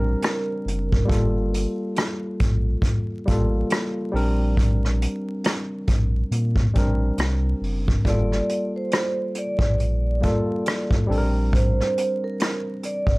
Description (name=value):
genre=lo-fi hip hop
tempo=69 BPM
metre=4/4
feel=swing 58% on 16ths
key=unclear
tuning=A4 = 439 Hz
part: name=vibraphone with soft mallets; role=melody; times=0.0-1.1, 8.1-13.2 s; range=Bb4 to D5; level=-28 LUFS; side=right 2 dB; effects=tape echo
part: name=barky tine electric piano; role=accompaniment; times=0.0-13.2 s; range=G3 to Bb4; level=-27 LUFS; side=equal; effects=overdrive, cassette tape
part: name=sub bass with octave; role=bass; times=0.0-13.2 s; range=Gb1 to Bb2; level=-23 LUFS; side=equal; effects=none
part: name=vintage brush drum kit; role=drums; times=0.2-13.2 s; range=hi-hat, kick drum, rim click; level=-23 LUFS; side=equal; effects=none
room=light reverb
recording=dry, gritty hardware recording, vinyl crackle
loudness=-20 LUFS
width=side -24 dB against mid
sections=0.0-8.0 A section; 8.0-13.2 B section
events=none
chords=0.0 Bb69; 1.1 Gm9; 4.1 Bb69; 8.0 Gm9; 11.1 Bb69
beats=0.22 | 1.09 1.96 2.83 3.70 | 4.57 5.44 6.31 7.18 | 8.05 8.92 9.79 10.66 | 11.53 12.40